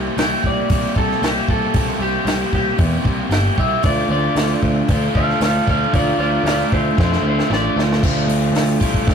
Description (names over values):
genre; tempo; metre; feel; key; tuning
indie rock; 115 BPM; 4/4; straight; D minor; A4 = 436 Hz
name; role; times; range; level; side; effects
crunchy overdriven guitar; riff; 0.0-9.1 s; C3 to G4; -20 LUFS; equal; none
picked electric bass; bass; 0.0-9.1 s; G1 to F2; -22 LUFS; equal; none
electric guitar through a small old amp; melody; 0.2-7.8 s; E4 to G5; -21 LUFS; right 1 dB; none
compact cocktail drum kit; drums; 0.2-9.1 s; crash cymbal, hi-hat, kick drum, snare drum; -20 LUFS; equal; none
room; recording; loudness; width
wet booth ambience, RT60 0.2 s; rough rehearsal-room recording, warm saturation; -15 LUFS; side -7 dB against mid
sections
0.0-8.0 A section; 8.0-9.1 B section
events
clean electric guitar solo 0.0-8.0; drum fill 7.0-8.0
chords
0.0 C7; 3.8 Dm